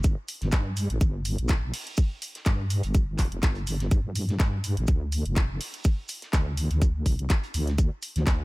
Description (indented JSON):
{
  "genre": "bass house",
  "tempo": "124 BPM",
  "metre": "4/4",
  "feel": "swing 55% on 16ths",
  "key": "G minor",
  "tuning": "A4 = 440 Hz",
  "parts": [
    { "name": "wobble bass", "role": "bass", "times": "0.0-8.4 s", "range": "F1 to G2", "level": "-27 LUFS", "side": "equal", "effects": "chorus, tube saturation, sidechain pumping" },
    { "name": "cloth-damped thuddy drum kit", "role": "drums", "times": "0.0-8.4 s", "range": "hi-hat, shaker, snare drum", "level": "-42 LUFS", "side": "right 3 dB", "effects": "sidechain pumping on hats, high-pass filter on hats, high-pass filter on snare, sidechain pumping on perc, high-pass filter on perc, high-pass filter on room" },
    { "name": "electronic kick drum", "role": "drums", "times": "0.0-8.4 s", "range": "none", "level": "-22 LUFS", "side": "equal", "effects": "overdrive" },
    { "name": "garage drum kit", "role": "drums", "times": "0.0-8.4 s", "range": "handclaps, hi-hat", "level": "-34 LUFS", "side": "equal", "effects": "none" }
  ],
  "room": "studio reverb",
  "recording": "none",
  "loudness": "-24 LUFS",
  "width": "side -22 dB against mid",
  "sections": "0.0-8.4 A section",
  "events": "none",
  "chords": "none",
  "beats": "0.04 0.53 | 1.01 1.49 1.98 2.46 | 2.95 3.43 3.91 4.40 | 4.88 5.37 5.85 6.33 | 6.82 7.30 7.78 8.27"
}